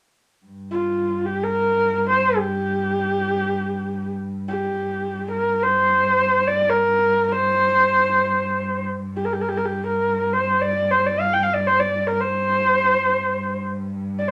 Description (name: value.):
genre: mongolian traditional.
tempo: free time.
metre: none.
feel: none.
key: G yu mode.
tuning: A4 = 440 Hz.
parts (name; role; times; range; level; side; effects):
clear cello; drone; 0.5-14.3 s; G2; -30 LUFS; equal; none.
dark horsehead fiddle; melody; 0.7-14.3 s; F4 to G5; -21 LUFS; equal; none.
room: wet studio ambience, RT60 0.4 s.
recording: none.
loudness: -21 LUFS.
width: mono.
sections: 0.5-14.3 A section.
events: none.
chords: none.